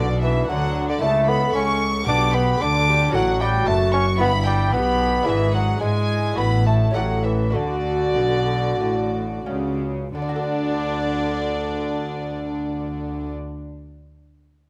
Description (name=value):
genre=classical, baroque-style concerto movement with solo episodes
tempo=86-114 BPM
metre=4/4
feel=straight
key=D major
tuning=A4 = 440 Hz
part: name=warm bassoon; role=melody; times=0.0-13.3 s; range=D3 to D4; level=-26 LUFS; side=equal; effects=none
part: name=warm chamber violin section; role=melody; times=0.0-13.3 s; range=D5 to D6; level=-31 LUFS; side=equal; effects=none
part: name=rich chamber violin section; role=second line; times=0.0-13.3 s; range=D4 to D6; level=-34 LUFS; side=equal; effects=none
part: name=dark chamber viola section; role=accompaniment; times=0.0-13.3 s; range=D4 to A4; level=-30 LUFS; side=equal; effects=none
part: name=lute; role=accompaniment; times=0.0-13.6 s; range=F#2 to F#5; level=-33 LUFS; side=equal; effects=none
part: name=rich chamber cello section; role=bass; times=0.0-13.3 s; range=C#2 to G#3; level=-29 LUFS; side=equal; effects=none
part: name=rich studio double bass section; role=bass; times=0.0-13.3 s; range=F#1 to G#2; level=-28 LUFS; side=equal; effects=none
room=moderate recital hall reverb, RT60 1.4 s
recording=close, detailed microphones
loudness=-21 LUFS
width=mono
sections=0.0-10.1 A section; 10.1-14.7 B section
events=slowing down 4.2-10.1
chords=0.0 Bm; 1.0 A/C#; 2.1 G/B; 3.1 F#m/A; 4.2 Em/G; 5.3 E7/G#; 6.4 D/A; 7.0 A7; 7.5 D